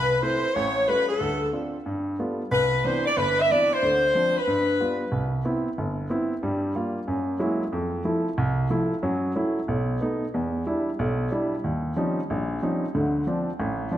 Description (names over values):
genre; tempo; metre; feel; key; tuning
jazz; 184 BPM; 4/4; swing 64% on 8ths; C major; A4 = 440 Hz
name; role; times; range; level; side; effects
warm saxophone section; melody; 0.0-5.0 s; A4 to E5; -22 LUFS; left 1 dB; none
warm baby grand piano; accompaniment; 0.0-14.0 s; G1 to F4; -25 LUFS; right 1 dB; none
room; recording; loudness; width
wet recital hall reverb, RT60 1.6 s; none; -22 LUFS; side -12 dB against mid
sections
0.0-5.1 A section; 5.1-14.0 B section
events
none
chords
0.0 C6; 0.6 A7b13; 1.2 Dm7; 1.9 G9; 2.5 Cmaj9; 3.8 Dm7; 4.5 G7; 5.1 Cmaj7; 6.4 Gm7; 7.1 F#9; 7.7 Fmaj7; 9.0 F#m7; 9.7 B7; 10.3 Em7; 11.6 Eb13; 12.9 Dm7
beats
0.23 0.56 0.88 | 1.21 1.53 1.86 2.19 | 2.51 2.84 3.17 3.49 | 3.82 4.15 4.47 4.80 | 5.13 5.45 5.78 6.11 | 6.43 6.76 7.08 7.41 | 7.73 8.06 8.39 8.71 | 9.04 9.36 9.69 10.02 | 10.34 10.67 10.99 11.32 | 11.64 11.97 12.29 12.62 | 12.94 13.27 13.59 13.92